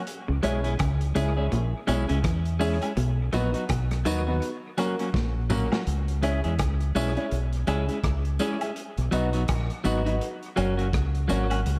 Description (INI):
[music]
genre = roots reggae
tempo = 83 BPM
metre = 4/4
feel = swing 59% on 16ths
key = C# dorian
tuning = A4 = 440 Hz
[part]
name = crunchy breakbeat drum kit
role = drums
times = 0.1-11.8 s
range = hi-hat, kick drum, rim click, snare drum, toms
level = -34 LUFS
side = equal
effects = dub echo
[part]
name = electric guitar at the edge of break-up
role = riff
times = 0.3-5.4 s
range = A#2 to E3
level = -34 LUFS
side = equal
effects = none
[part]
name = deep dub fingered electric bass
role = bass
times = 0.3-11.8 s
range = F#1 to E2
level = -29 LUFS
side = equal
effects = none
[part]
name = clean electric guitar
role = accompaniment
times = 0.4-11.6 s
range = F#3 to G#4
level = -32 LUFS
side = equal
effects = spring reverb, dub echo
[part]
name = dark upright piano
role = stabs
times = 0.4-11.5 s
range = A#3 to D#5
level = -35 LUFS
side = equal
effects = none
[part]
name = tambourine and woodblock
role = percussion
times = 0.4-11.6 s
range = none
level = -41 LUFS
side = equal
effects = none
[sound]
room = light reverb, small room ambience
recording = echo-heavy mix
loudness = -26 LUFS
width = mono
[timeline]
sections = 0.0-5.9 A section; 5.9-11.8 B section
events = drum fill 5.1-5.9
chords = 0.1 C#m; 3.0 B; 4.4 F#; 5.9 C#m; 8.8 B; 10.2 F#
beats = | 0.07 0.80 1.52 2.25 | 2.97 3.69 4.42 5.14 | 5.87 6.59 7.32 8.04 | 8.76 9.49 10.21 10.94 | 11.66